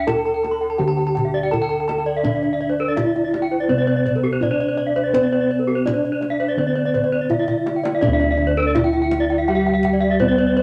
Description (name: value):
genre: Balinese gamelan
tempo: 83 BPM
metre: 4/4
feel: straight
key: D slendro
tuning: A4 = 440 Hz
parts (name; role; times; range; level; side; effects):
- gamelan-type bronze metallophone; melody; 0.0-10.6 s; C4-45c to A4+25c; -24 LUFS; equal; none
- gamelan-type bronze metallophone; arpeggios; 0.0-10.6 s; G4-35c to C6-45c; -27 LUFS; equal; none
- gamelan-type bossed gongs; bass; 0.0-10.6 s; D2 to C5-45c; -27 LUFS; equal; none
- gamelan-type bronze metallophone; arpeggios; 0.1-10.6 s; A4+25c to A5+25c; -26 LUFS; equal; none
- kendang; percussion; 0.1-10.5 s; none; -31 LUFS; equal; none
- gamelan-type bronze metallophone; accompaniment; 8.0-10.6 s; D3 to G3-35c; -25 LUFS; equal; none
room: moderate studio reverb, RT60 0.9 s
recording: none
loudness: -19 LUFS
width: mono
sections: 0.0-10.6 A section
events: drum fill 7.3-8.0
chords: none